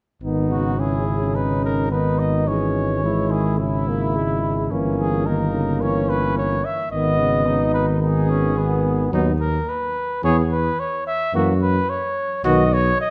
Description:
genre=classical, brass quintet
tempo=108 BPM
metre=4/4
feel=straight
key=G# minor, B major from 9.1 s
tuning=A4 = 438 Hz
part: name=mellow trumpet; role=second line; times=0.2-12.6 s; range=B3 to G#4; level=-30 LUFS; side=equal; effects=none
part: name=mellow French horn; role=accompaniment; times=0.2-12.6 s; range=G#3 to C#4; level=-29 LUFS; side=equal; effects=none
part: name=warm trombone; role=accompaniment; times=0.2-12.6 s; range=C#3 to F#3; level=-28 LUFS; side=equal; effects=none
part: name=mellow bass trombone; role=bass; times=0.2-12.9 s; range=G1 to F#2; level=-25 LUFS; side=equal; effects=none
part: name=warm cornet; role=melody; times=0.5-13.1 s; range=E4 to E5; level=-26 LUFS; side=equal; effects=none
room=moderate scoring stage reverb, RT60 1.6 s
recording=none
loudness=-21 LUFS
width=mono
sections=0.2-13.1 A section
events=none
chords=0.2 G#m; 2.5 A#m7b5/G#; 4.7 Gdim7; 6.9 G#m; 9.1 B/D#; 10.2 E5; 11.3 F#7; 12.4 B

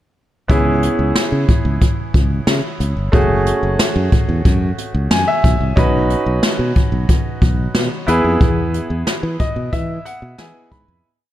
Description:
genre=1980s-style pop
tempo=91 BPM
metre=4/4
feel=straight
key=E major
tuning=A4 = 440 Hz
part: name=bright grand piano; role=accompaniment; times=0.5-11.1 s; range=A3 to B5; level=-20 LUFS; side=equal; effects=none
part: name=modern bright fingered electric bass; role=bass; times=0.5-11.0 s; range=F#1 to E3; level=-19 LUFS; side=equal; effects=none
part: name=jazz brush drum kit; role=drums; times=0.5-10.9 s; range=hi-hat, kick drum, snare drum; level=-16 LUFS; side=equal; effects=none
room=light reverb, small room reverb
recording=dark, warm production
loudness=-14 LUFS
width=side -13 dB against mid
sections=0.5-11.0 verse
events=grand piano fill 4.8-5.8, 9.1-11.0; fade-out 8.4-11.0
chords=0.5 C#m7; 3.1 F#madd9; 5.8 Badd9; 8.1 E

